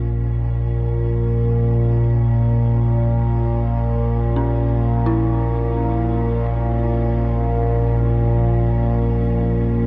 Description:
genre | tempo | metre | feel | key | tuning
dark ambient drone | free time | none | none | unclear | A4 = 440 Hz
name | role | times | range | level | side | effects
rich studio cello section | sustained chords | 0.0-9.9 s | Bb2 to Db4 | -34 LUFS | equal | shimmer reverb
dark detuned synth bell | arpeggios | 0.0-9.9 s | Db4 to E4 | -31 LUFS | equal | chorus, tape echo, shimmer reverb
analog drone | drone | 0.0-9.9 s | Bb1 to Bb2 | -19 LUFS | equal | chorus
room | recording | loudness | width
wet cathedral reverb, RT60 7.5 s | dark, warm production | -19 LUFS | mono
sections
0.0-9.9 A section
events
fade-in on cello section 0.0-9.9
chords
0.0 Bbm

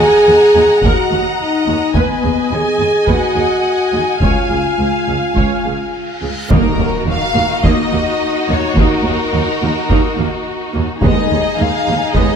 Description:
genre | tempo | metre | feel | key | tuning
cinematic, epic orchestral film score | 106 BPM | 4/4 | straight | Eb minor | A4 = 441 Hz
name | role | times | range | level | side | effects
warm symphonic violin section | melody | 0.0-12.4 s | Bb4 to Ab5 | -21 LUFS | left 2 dB | none
warm symphonic violin section | second line | 0.0-12.4 s | Eb4 to Bb5 | -20 LUFS | left 2 dB | none
warm symphonic viola section | accompaniment | 0.0-12.4 s | Eb3 to F5 | -22 LUFS | right 3 dB | none
mellow French horn section | sustained chords | 0.0-12.3 s | Bb3 to Ab4 | -15 LUFS | equal | none
rich chamber cello section | bass | 0.0-12.2 s | Db2 to Eb2 | -22 LUFS | right 3 dB | none
rich symphonic double bass section | bass | 0.0-12.2 s | Db2 to Eb2 | -22 LUFS | right 4 dB | none
taiko ensemble | drums | 0.8-12.4 s | none | -18 LUFS | equal | none
reverse cymbal and impact | sound effects | 6.1-8.8 s | none | -27 LUFS | equal | none
timpani | percussion | 6.5-7.3, 11.0-11.8 s | Eb3 | -20 LUFS | equal | none
room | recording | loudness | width
wet scoring stage reverb, RT60 1.7 s | none | -12 LUFS | side -7 dB against mid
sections
0.0-6.5 A section; 6.5-12.4 A section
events
reverse cymbal 6.1-6.5; impact 6.5-8.8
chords
0.0 Ebm; 1.9 Abm/Eb; 4.2 Db; 6.5 Ebm; 11.0 Abm/Eb

